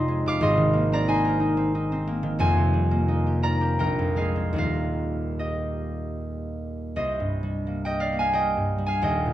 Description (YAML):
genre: classical, solo harp piece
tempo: 72-90 BPM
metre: 3/4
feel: rubato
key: unclear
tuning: A4 = 440 Hz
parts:
  - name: concert harp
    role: solo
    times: 0.0-9.3 s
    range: Eb1 to D6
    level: -22 LUFS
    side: equal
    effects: none
room: wet recital hall reverb, RT60 1.3 s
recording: dark, warm production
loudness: -22 LUFS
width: side -13 dB against mid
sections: 0.0-7.0 A section; 7.0-9.3 A section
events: none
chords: 0.4 Ab69; 2.4 Fm11; 3.8 Bb9sus4; 4.6 Ebadd9; 7.0 Cm7